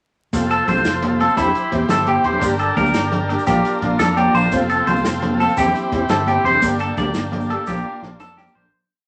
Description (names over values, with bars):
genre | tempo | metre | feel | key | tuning
highlife guitar band | 114 BPM (dotted quarters) | 12/8 | straight | F major | A4 = 440 Hz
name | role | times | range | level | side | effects
fingerpicked steel-string acoustic guitar | accompaniment | 0.3-8.7 s | E3 to G4 | -27 LUFS | equal | none
overdriven combo organ | sustained chords | 0.3-8.7 s | Bb3 to C5 | -27 LUFS | equal | none
fingered electric bass | bass | 0.3-8.7 s | E1 to F2 | -28 LUFS | equal | none
vintage drum kit | drums | 0.3-8.5 s | hi-hat, kick drum, snare drum | -29 LUFS | equal | none
congas | percussion | 0.3-8.7 s | none | -26 LUFS | equal | none
maracas | percussion | 0.3-8.5 s | none | -42 LUFS | equal | none
clean electric guitar | arpeggios | 0.5-8.7 s | E4 to D5 | -21 LUFS | equal | phaser
room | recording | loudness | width
wet studio ambience, RT60 0.5 s | vinyl crackle | -18 LUFS | mono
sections
0.3-8.7 groove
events
fade-out 6.6-8.7; drum fill 7.7-8.7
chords
0.3 F; 1.4 C/E; 2.4 Gm; 3.5 Bb; 4.5 F; 5.6 C/E; 6.6 Gm; 7.7 Bb